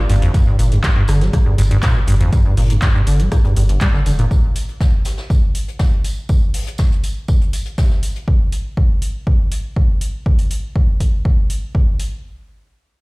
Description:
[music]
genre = acid house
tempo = 121 BPM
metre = 4/4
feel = straight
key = G minor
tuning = A4 = 439 Hz
[part]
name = acid bass, square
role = riff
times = 0.1-4.3 s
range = G1 to G3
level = -17 LUFS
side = equal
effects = sidechain pumping
[part]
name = saturated sub bass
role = bass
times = 0.1-4.3 s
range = F1 to G1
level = -16 LUFS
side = equal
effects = sidechain pumping
[part]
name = electro analog drum machine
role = drums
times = 0.1-12.1 s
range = handclaps, hi-hat, rim click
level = -27 LUFS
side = equal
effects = none
[part]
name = jazz brush drum kit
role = drums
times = 0.1-8.3 s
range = hi-hat, snare drum, tambourine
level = -35 LUFS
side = left 1 dB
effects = sidechain pumping on hats, high-pass filter on hats, high-pass filter on snare, sidechain pumping on perc, high-pass filter on perc, high-pass filter on room
[part]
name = electronic kick drum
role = drums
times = 0.3-11.8 s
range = none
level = -16 LUFS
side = equal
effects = none
[sound]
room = little or no reverb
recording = played on a big sound system in a bare room, large studio reverb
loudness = -14 LUFS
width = side -25 dB against mid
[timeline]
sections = 0.0-12.2 A section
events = filter sweep on acid bass 0.0-4.3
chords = none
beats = | 0.34 0.84 1.33 1.83 | 2.33 2.82 3.32 3.81 | 4.31 4.80 5.30 5.80 | 6.29 6.79 7.28 7.78 | 8.28 8.77 9.27 9.76 | 10.26 10.76 11.25 11.75

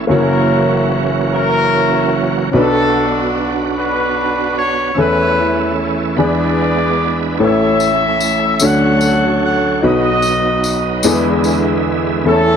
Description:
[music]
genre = slow gospel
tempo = 49 BPM (dotted quarters)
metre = 6/8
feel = straight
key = A major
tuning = A4 = 440 Hz
[part]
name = warm horn section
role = melody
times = 0.0-12.6 s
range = C#4 to F#5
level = -17 LUFS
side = left 1 dB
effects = tape echo
[part]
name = warm baby grand piano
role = accompaniment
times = 0.0-12.6 s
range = F#1 to D5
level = -16 LUFS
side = left 2 dB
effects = none
[part]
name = bright tonewheel organ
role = sustained chords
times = 0.0-12.6 s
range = D3 to C#5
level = -19 LUFS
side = right 6 dB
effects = fast rotary speaker, overdrive, chorus vibrato
[part]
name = tambourine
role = percussion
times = 7.8-11.8 s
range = none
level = -22 LUFS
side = left 5 dB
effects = none
[sound]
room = moderate echo chamber reverb, RT60 1.8 s, studio reverb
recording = dark, warm production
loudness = -12 LUFS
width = side -7 dB against mid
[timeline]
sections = 0.0-12.6 A section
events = none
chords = 0.1 F#7; 2.5 Bm; 5.0 A/E; 6.2 E7; 7.4 A; 8.6 Dmaj7; 9.8 B; 11.0 E7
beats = | 0.10 1.31 | 2.53 3.75 | 4.96 6.18 | 7.39 8.61 | 9.83 11.04 | 12.26

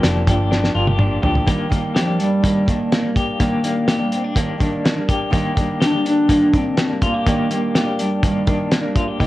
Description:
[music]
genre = jangly indie pop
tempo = 124 BPM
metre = 4/4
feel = straight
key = Eb major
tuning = A4 = 440 Hz
[part]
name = fingerpicked steel-string acoustic guitar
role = accompaniment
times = 0.0-9.3 s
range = C3 to G4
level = -24 LUFS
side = right 2 dB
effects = none
[part]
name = electric guitar through a small old amp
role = arpeggios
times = 0.0-9.3 s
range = F3 to G4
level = -23 LUFS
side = left 3 dB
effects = tremolo, analog delay
[part]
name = vintage muted fingered electric bass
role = bass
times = 0.0-1.4, 9.2-9.3 s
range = F1 to D2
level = -20 LUFS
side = equal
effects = none
[part]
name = cloth-damped thuddy drum kit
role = drums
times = 0.0-9.3 s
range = hi-hat, kick drum, snare drum, toms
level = -19 LUFS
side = equal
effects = none
[part]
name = hollow clarinet-like synth lead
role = melody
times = 2.0-8.9 s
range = F3 to D4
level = -19 LUFS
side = equal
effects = chorus
[sound]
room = moderate studio reverb, RT60 0.7 s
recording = worn, warbling old tape, cassette tape, warbly pitch drift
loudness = -16 LUFS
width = side -16 dB against mid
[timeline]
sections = 0.0-1.5 A section; 1.5-9.3 B section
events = drum fill 0.5-1.5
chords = 0.0 Gm7; 1.5 Ebmaj7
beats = 0.03 0.51 0.99 | 1.47 1.96 2.44 2.92 | 3.40 3.88 4.37 4.85 | 5.33 5.81 6.30 6.78 | 7.26 7.75 8.23 8.71 | 9.20

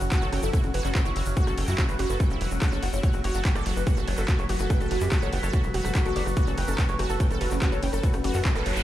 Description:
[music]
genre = psychedelic trance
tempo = 144 BPM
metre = 4/4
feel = straight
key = F# phrygian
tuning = A4 = 440 Hz
[part]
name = overdriven synth lead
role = melody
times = 0.0-8.8 s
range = C#4 to D5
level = -33 LUFS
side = equal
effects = chorus, phaser, sidechain pumping, dub echo
[part]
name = overtone-sweeping drone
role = sustained chords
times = 0.0-8.8 s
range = F#3 to B4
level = -34 LUFS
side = equal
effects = chorus, built-in reverb, sidechain pumping
[part]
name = tight sequencer bass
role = bass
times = 0.0-8.8 s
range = E1 to F#2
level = -28 LUFS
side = equal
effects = none
[part]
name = techno drum kit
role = drums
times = 0.0-8.8 s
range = handclaps, hi-hat, ride cymbal, rim click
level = -34 LUFS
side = equal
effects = overdrive
[part]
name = egg shaker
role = percussion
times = 0.0-8.8 s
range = none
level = -44 LUFS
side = left 3 dB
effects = none
[part]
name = wide unison pluck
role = riff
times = 0.1-8.7 s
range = E4 to G5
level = -33 LUFS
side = moving between left 3 dB and right 5 dB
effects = auto-pan, vintage 12-bit sampler grit, sidechain pumping, dub echo
[part]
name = electronic kick drum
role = drums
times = 0.1-8.5 s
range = none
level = -25 LUFS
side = equal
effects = none
[part]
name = noise sweep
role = sound effects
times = 8.3-8.8 s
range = none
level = -33 LUFS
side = right 2 dB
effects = none
[sound]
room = little or no reverb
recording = played on a big sound system in a bare room, large studio reverb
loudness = -23 LUFS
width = side -13 dB against mid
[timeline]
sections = 0.0-8.8 A section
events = noise sweep 8.3-8.8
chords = 0.0 F#5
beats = 0.12 0.53 0.95 | 1.37 1.78 2.20 2.62 | 3.03 3.45 3.87 4.28 | 4.70 5.12 5.53 5.95 | 6.37 6.78 7.20 7.62 | 8.03 8.45

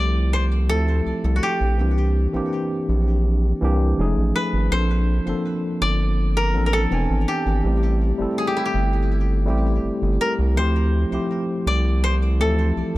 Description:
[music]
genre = contemporary R&B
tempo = 82 BPM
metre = 4/4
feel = straight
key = D minor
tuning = A4 = 440 Hz
[part]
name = koto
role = melody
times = 0.0-13.0 s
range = E4 to D5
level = -26 LUFS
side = equal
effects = digital delay
[part]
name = tine electric piano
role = accompaniment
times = 0.0-13.0 s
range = E3 to G#5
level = -24 LUFS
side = left 1 dB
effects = medium stereo tremolo
[part]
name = round analog bass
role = bass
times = 0.0-13.0 s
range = E1 to D2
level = -20 LUFS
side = equal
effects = none
[sound]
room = small room reverb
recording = dark, warm production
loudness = -18 LUFS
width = side -18 dB against mid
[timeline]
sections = 0.0-13.0 A section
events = none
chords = 0.0 Dm11; 1.8 C7; 4.0 F7alt; 4.7 Bbmaj9; 6.9 E7b13; 7.6 Am7; 10.6 Dm11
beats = 0.32 1.06 | 1.79 2.52 3.25 3.98 | 4.71 5.45 6.18 6.91 | 7.64 8.37 9.11 9.84 | 10.57 11.30 12.03 12.76

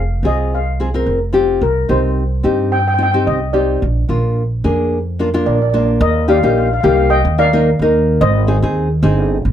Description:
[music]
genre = calypso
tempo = 109 BPM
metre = 4/4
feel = swing 54% on 16ths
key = Eb major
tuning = A4 = 439 Hz
[part]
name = steel pan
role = melody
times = 0.0-9.0 s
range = Bb4 to G5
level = -18 LUFS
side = equal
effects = none
[part]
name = nylon-string guitar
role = accompaniment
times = 0.0-9.4 s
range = Bb3 to Bb4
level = -16 LUFS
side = left 2 dB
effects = none
[part]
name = upright bass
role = bass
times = 0.0-9.5 s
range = F1 to G2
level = -16 LUFS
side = right 1 dB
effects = none
[sound]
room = light reverb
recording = none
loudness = -13 LUFS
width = side -10 dB against mid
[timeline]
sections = 0.0-6.0 A section; 6.0-9.5 B section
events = none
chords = 0.0 Fm; 1.6 Cm; 3.8 Bb; 6.0 Eb; 8.2 Abmaj7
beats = 0.52 1.06 | 1.61 2.17 2.71 3.27 | 3.82 4.37 4.92 5.46 | 6.01 6.56 7.11 7.66 | 8.21 8.76 9.31

